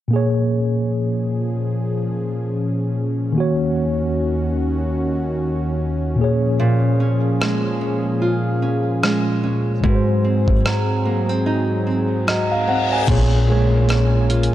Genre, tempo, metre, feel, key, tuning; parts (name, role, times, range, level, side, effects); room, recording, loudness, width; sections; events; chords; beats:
contemporary R&B; 74 BPM; 4/4; swing 58% on 16ths; Bb minor; A4 = 440 Hz
mellow tine electric piano; accompaniment; 0.1-14.5 s; Ab2 to Ab5; -20 LUFS; equal; medium stereo tremolo
warm analog pad; sustained chords; 0.1-14.5 s; Eb2 to Ab5; -23 LUFS; equal; chorus
nylon-string guitar; arpeggios; 6.6-14.5 s; Ab2 to F4; -21 LUFS; right 2 dB; digital delay
dusty soul sampler-style drum kit; drums; 7.4-14.5 s; crash cymbal, hi-hat, kick drum, rim click; -23 LUFS; equal; vintage 12-bit sampler grit
reverse cymbal and downlifter; sound effects; 12.4-14.5 s; -29 LUFS; left 3 dB
clean 808-style bass; bass; 13.1-14.5 s; Bb1; -21 LUFS; equal
light reverb, digital ambience; dark, warm production; -17 LUFS; side -13 dB against mid
0.1-13.1 A section; 13.1-14.5 B section
reverse cymbal 12.4-13.1
0.1 Bbm7; 3.4 Ebm7; 6.2 Bbm7; 9.8 Ab7; 13.1 Bbm7
| 0.11 0.92 1.73 2.54 | 3.35 4.16 4.97 5.78 | 6.59 7.41 8.22 9.03 | 9.84 10.65 11.46 12.27 | 13.08 13.89